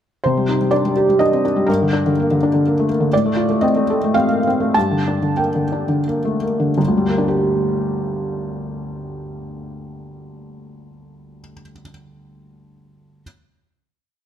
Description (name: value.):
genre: neoclassical minimalist piano.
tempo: 82-126 BPM.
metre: 3/4.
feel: rubato.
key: G minor.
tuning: A4 = 438 Hz.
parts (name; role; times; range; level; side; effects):
felt-muted upright piano; solo; 0.2-13.2 s; G1 to A5; -16 LUFS; equal; none.
room: light reverb.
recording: close, detailed microphones.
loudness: -16 LUFS.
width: side -9 dB against mid.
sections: 0.2-6.8 A section; 6.8-11.0 final chord.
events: slowing down 2.4-6.8.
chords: 0.2 Cmadd9; 1.7 Gm; 3.1 F/A; 4.7 Gm.